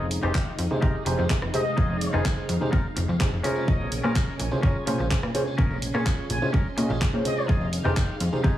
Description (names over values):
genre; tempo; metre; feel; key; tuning
filtered disco house; 126 BPM; 4/4; straight; F minor; A4 = 440 Hz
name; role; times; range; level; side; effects
dark trumpet section; melody; 0.0-7.7 s; Eb5 to Ab5; -33 LUFS; left 2 dB; sidechain pumping, low-pass filter, tape echo
auto-wah clav; accompaniment; 0.0-8.6 s; Db4 to C6; -29 LUFS; right 1 dB; overdrive, phaser, sidechain pumping, low-pass filter
string machine, full ensemble; sustained chords; 0.0-8.6 s; Ab3 to C6; -35 LUFS; equal; phaser, ensemble chorus, sidechain pumping, low-pass filter
twangy electric guitar; riff; 0.0-8.6 s; Db4 to Db5; -34 LUFS; left 2 dB; sidechain pumping, low-pass filter
plucky analog bass; bass; 0.0-8.5 s; F1 to C3; -27 LUFS; equal; sidechain pumping, low-pass filter
congas and tambourine; percussion; 0.0-8.5 s; none; -34 LUFS; right 2 dB; sidechain pumping on perc, low-pass filter on perc
house drum kit; drums; 0.1-8.3 s; handclaps, hi-hat, rim click; -32 LUFS; equal; sidechain pumping on hats
electronic kick drum; drums; 0.3-8.5 s; none; -24 LUFS; equal; none
room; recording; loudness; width
little or no reverb; heavily compressed radio sound, studio reverb; -22 LUFS; side -13 dB against mid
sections
0.0-8.6 A section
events
none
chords
0.0 Fm7; 3.4 Bbm7; 7.5 Fm7